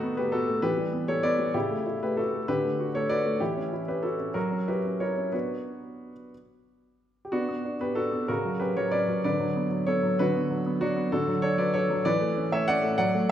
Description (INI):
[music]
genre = classical-period piano sonatina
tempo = 59-65 BPM (dotted quarters)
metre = 6/8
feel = rubato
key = B minor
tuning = A4 = 440 Hz
[part]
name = warm baby grand piano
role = solo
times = 0.0-13.3 s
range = C#3 to F#5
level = -25 LUFS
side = equal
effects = none
[sound]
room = wet recital hall reverb, RT60 1.7 s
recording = recorded in a church or concert hall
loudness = -25 LUFS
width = side -10 dB against mid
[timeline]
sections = 0.0-7.3 A section; 7.3-13.3 A section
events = none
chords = 0.0 B7/D#; 0.6 Em; 1.6 A7/C#; 2.5 D; 3.4 C#dim/E; 4.4 F#7; 5.3 Bm; 8.3 F#/C#; 9.3 Bm/D; 12.1 A/E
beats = 0.62 | 1.55 2.48 | 3.41 4.36 | 5.34 6.33 | 7.33 8.29 | 9.25 10.19 | 11.12 12.06 | 12.98